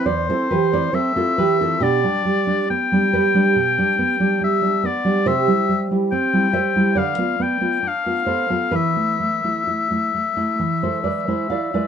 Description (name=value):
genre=romantic duo for oboe and classical guitar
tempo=64-71 BPM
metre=4/4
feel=rubato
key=unclear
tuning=A4 = 440 Hz
part: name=clear oboe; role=melody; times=0.0-11.9 s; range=C5 to G5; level=-21 LUFS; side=left 5 dB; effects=none
part: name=nylon-string guitar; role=accompaniment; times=0.0-11.9 s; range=E2 to F5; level=-19 LUFS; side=right 2 dB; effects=none
room=light reverb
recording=nothing above 10.8 kHz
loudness=-17 LUFS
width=side -8 dB against mid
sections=0.0-11.9 A section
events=none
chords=0.0 Am; 1.8 G/B; 5.3 C; 7.0 Bdim/D; 8.7 Esus4; 10.6 E